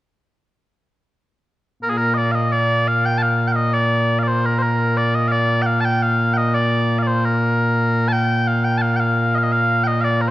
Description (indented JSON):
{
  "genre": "scottish traditional, Scottish pipe music",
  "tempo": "86 BPM",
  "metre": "2/4",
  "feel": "straight",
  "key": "Bb major",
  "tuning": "A4 = 440 Hz",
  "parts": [
    { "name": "mellow small bagpipes", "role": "solo", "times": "1.8-10.3 s", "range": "Bb2 to A5", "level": "-16 LUFS", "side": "equal", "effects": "none" }
  ],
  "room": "wet recital hall reverb, RT60 1.5 s",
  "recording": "worn, warbling old tape, cassette tape, warbly pitch drift",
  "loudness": "-16 LUFS",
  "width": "side -15 dB against mid",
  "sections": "1.1-2.5 A section; 2.5-10.3 B section",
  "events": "none",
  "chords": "none"
}